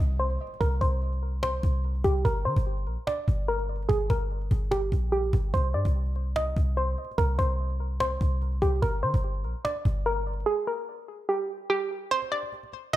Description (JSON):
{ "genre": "hip hop, trap", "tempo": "146 BPM", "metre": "4/4", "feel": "half-time", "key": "unclear", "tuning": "A4 = 440 Hz", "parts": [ { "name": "hollow square pluck", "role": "melody", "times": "0.0-13.0 s", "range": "G4 to Eb5", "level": "-29 LUFS", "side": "right 1 dB", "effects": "chorus, low-pass filter, ping-pong delay" }, { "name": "clean 808-style bass", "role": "bass", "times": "0.0-10.4 s", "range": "G1 to D3", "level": "-26 LUFS", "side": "equal", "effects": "none" }, { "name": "impact", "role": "sound effects", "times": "0.0-0.6 s", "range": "none", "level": "-52 LUFS", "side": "right 1 dB", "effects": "none" }, { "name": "cajon", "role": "drums", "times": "0.2-13.0 s", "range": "none", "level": "-35 LUFS", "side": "equal", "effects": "none" } ], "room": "light reverb", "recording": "bright 1980s-style digital production", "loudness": "-25 LUFS", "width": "side -14 dB against mid", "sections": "0.0-13.0 A section", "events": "impact 0.0-0.6; filter sweep on synth pluck 0.0-12.1; drums muted 10.5-12.1; kick muted 12.1-13.0", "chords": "0.0 Cm; 2.2 Gm; 5.5 Cmadd9; 8.8 Gm; 12.1 N.C.", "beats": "0.20 | 0.61 1.02 1.43 1.84 | 2.25 2.66 3.07 3.48 | 3.89 4.30 4.72 5.13 | 5.54 5.95 6.36 6.77 | 7.18 7.59 8.00 8.41 | 8.82 9.24 9.65 10.06 | 10.47 10.88 11.29 11.70 | 12.11 12.52 12.94" }